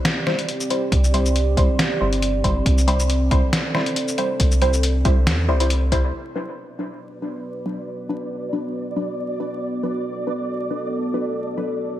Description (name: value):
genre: deep dubstep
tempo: 138 BPM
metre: 4/4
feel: swing 54% on 16ths, half-time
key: B phrygian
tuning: A4 = 442 Hz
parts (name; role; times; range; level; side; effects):
- dark analog pad; sustained chords; 0.0-12.0 s; B3 to D5; -26 LUFS; right 1 dB; chorus
- trip hop sampler-style drum kit; drums; 0.1-6.0 s; hi-hat, shaker, snare drum; -24 LUFS; left 1 dB; low-pass filter on hats, low-pass filter on perc, low-pass filter on snare, gated reverb
- filtered dub chord stab; stabs; 0.3-11.7 s; F#3 to C5; -27 LUFS; left 1 dB; phaser, dub echo
- soft dub sub bass; bass; 0.9-6.1 s; G1 to E2; -20 LUFS; equal; tube saturation
- electronic kick drum; drums; 0.9-6.0 s; none; -20 LUFS; equal; none
- flickering grainy texture; texture; 6.1-12.0 s; D5; -31 LUFS; right 1 dB; built-in reverb, wide subtle chorus
room: moderate plate reverb, RT60 2.1 s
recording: bright 1980s-style digital production, vinyl crackle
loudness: -19 LUFS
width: side -13 dB against mid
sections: 0.0-6.1 A section; 6.1-12.0 B section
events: none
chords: 0.0 C; 6.1 Bm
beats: 0.05 0.49 | 0.92 1.36 1.79 2.23 | 2.66 3.10 3.53 3.96 | 4.40 4.83 5.27 5.70 | 6.14 6.57 7.01 7.44 | 7.88 8.31 8.75 9.18 | 9.62 10.05 10.49 10.92 | 11.36 11.79